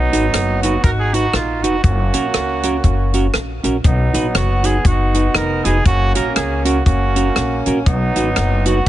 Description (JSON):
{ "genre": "ska", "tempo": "120 BPM", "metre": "4/4", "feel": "swing 59% on 8ths", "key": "unclear", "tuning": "A4 = 440 Hz", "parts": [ { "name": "warm horn section", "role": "melody", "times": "0.0-8.9 s", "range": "F#3 to A#4", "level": "-19 LUFS", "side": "right 2 dB", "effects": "none" }, { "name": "upright bass", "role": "bass", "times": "0.0-8.9 s", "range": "E#1 to C#2", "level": "-18 LUFS", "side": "left 1 dB", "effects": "none" }, { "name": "semi-hollow electric guitar", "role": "accompaniment", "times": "0.1-8.8 s", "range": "C#4 to B4", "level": "-22 LUFS", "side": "right 2 dB", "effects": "none" }, { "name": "compact cocktail drum kit", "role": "drums", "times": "0.1-8.9 s", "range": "hi-hat, kick drum, rim click", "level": "-18 LUFS", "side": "equal", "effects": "none" } ], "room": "small room ambience", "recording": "nothing above 10.3 kHz", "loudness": "-14 LUFS", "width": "side -13 dB against mid", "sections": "0.0-8.9 A section", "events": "none", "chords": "0.0 B; 1.8 F#; 3.8 B; 5.9 F#; 7.9 B", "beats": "0.34 0.84 1.34 | 1.84 2.34 2.85 3.35 | 3.85 4.35 4.85 5.35 | 5.86 6.36 6.86 7.36 | 7.86 8.36 8.87" }